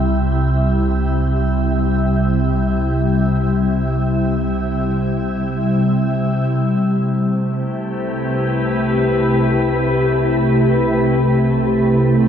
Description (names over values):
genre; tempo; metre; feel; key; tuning
ambient; free time; none; none; C major; A4 = 438 Hz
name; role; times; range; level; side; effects
glassy FM pad; sustained chords; 0.0-12.3 s; C3 to G5; -16 LUFS; left 1 dB; ensemble chorus, built-in reverb
deep rumbling drone; bass; 0.0-12.3 s; C2; -24 LUFS; right 2 dB; built-in reverb
organ-like drone; drone; 7.6-12.3 s; C3; -24 LUFS; right 1 dB; none
room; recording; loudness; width
wet cathedral reverb, RT60 7.2 s; nothing above 10.9 kHz; -15 LUFS; side -8 dB against mid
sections
0.0-12.3 A section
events
fade-out on synth drone 0.0-12.3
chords
0.0 C; 6.4 Am7/C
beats
free time